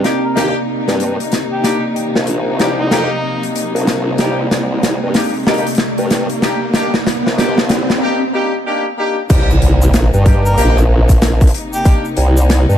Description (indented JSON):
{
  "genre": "glitch hop",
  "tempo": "94 BPM",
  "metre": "4/4",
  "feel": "swing 61% on 16ths",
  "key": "C minor",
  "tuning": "A4 = 440 Hz",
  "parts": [
    { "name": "dark studio string section", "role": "sustained chords", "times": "0.0-12.8 s", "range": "C3 to Eb4", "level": "-23 LUFS", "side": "left 2 dB", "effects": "sidechain pumping" },
    { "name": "clear horn section", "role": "stabs", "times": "0.0-12.0 s", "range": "Bb3 to G4", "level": "-21 LUFS", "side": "left 2 dB", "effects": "sidechain pumping, tape echo" },
    { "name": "formant-sweep wobble bass", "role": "bass", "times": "0.0-12.8 s", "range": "Bb1 to G2", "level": "-14 LUFS", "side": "equal", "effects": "chorus, overdrive, high-pass filter" },
    { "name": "modern studio drum kit", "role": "drums", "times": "0.0-12.7 s", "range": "crash cymbal, hi-hat, rim click, snare drum", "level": "-18 LUFS", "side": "equal", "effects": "none" },
    { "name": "riser and impact", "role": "sound effects", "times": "1.6-11.9 s", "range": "none", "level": "-21 LUFS", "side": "equal", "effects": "none" },
    { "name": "warbly tape-like pad", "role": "texture", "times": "0.0-8.0 s", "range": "C4 to D5", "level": "-24 LUFS", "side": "equal", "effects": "chorus, built-in reverb, sidechain pumping" },
    { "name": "clear harmonica", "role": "melody", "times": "0.2-3.4, 10.5-11.9 s", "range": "Eb4 to Bb4", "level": "-24 LUFS", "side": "right 1 dB", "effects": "low-pass filter, tape echo" },
    { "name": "electronic kick drum", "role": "drums", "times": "9.3-12.0 s", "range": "none", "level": "-9 LUFS", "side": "equal", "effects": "none" },
    { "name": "tube shaker", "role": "percussion", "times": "9.3-12.8 s", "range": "none", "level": "-30 LUFS", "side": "left 1 dB", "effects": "none" }
  ],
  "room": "light reverb, small room ambience",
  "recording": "lossy compression artefacts",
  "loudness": "-12 LUFS",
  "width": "side -10 dB against mid",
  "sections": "0.0-9.3 A section; 9.3-12.8 B section",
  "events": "build-up 0.0-9.3; drum fill 0.0-8.0; riser 1.6-8.0; break 8.0-9.3; drop 9.3-12.8; impact 9.3-11.9",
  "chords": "0.0 Cm7",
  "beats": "0.37 1.00 | 1.64 2.28 2.92 3.56 | 4.20 4.83 5.47 6.11 | 6.75 7.39 8.03 8.66 | 9.30 9.94 10.58 11.22 | 11.86 12.49"
}